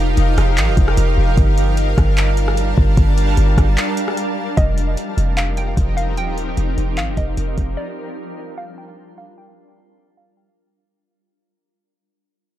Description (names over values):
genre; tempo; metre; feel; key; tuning
hip hop, atmospheric cloud-rap; 150 BPM; 4/4; half-time; G minor; A4 = 439 Hz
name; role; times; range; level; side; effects
shimmering ambient pad; sustained chords; 0.0-10.9 s; F3 to A5; -23 LUFS; equal; chorus, built-in reverb, low-pass filter
warm 808-style bass; bass; 0.0-7.8 s; Eb1 to A1; -16 LUFS; equal; none
drifting glass-harmonics texture; texture; 0.0-10.9 s; F3 to Bb4; -31 LUFS; right 1 dB; chorus, built-in reverb
smooth R&B drum kit; drums; 0.2-7.7 s; handclaps, hi-hat, kick drum, rim click; -18 LUFS; equal; vintage 12-bit sampler grit
hollow square pluck; melody; 4.6-10.9 s; D5 to G5; -28 LUFS; equal; chorus, low-pass filter, tape echo
room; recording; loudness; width
digital ambience; echo-heavy mix; -15 LUFS; side -13 dB against mid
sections
0.0-4.6 A section; 4.6-11.0 B section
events
break 3.8-4.6; fade-out 4.6-11.0; filter sweep 4.6-11.0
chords
0.0 F7sus4; 1.4 Gm7; 4.6 F7sus4; 7.8 Gm7